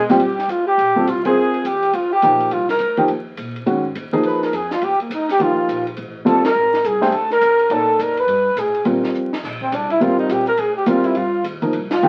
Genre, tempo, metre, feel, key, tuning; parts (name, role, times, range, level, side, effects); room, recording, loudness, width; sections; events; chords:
jazz, small-group swing and bop; 208 BPM; 4/4; swing 62% on 8ths; G minor; A4 = 442 Hz
breathy trumpet; melody; 0.0-12.1 s; Bb3 to B4; -20 LUFS; equal
clear alto saxophone; second line; 0.0-12.1 s; Bb3 to B4; -26 LUFS; equal
upright bass; bass; 0.0-12.1 s; G1 to Cb3; -36 LUFS; equal
dark baby grand piano; accompaniment; 0.1-12.1 s; Eb3 to D5; -20 LUFS; equal
compact cocktail drum kit; drums; 0.1-12.1 s; crash cymbal, hi-hat, kick drum, ride cymbal, snare drum; -33 LUFS; equal
moderate studio ambience, RT60 0.5 s; very old 78 rpm record, vinyl crackle; -18 LUFS; mono
0.2-9.4 A section; 9.4-12.1 B section
band accent 1.2, 6.4, 11.9; drum fill 9.1
0.2 Gm7; 1.4 Dm7b5; 1.9 C#add9; 2.5 Cm11; 3.7 Ab5; 4.2 C#add9; 4.8 Eb69; 6.0 Gm11; 6.5 Ab; 7.1 Gm9; 9.4 Gm11; 10.6 Bb13; 11.2 Ebadd9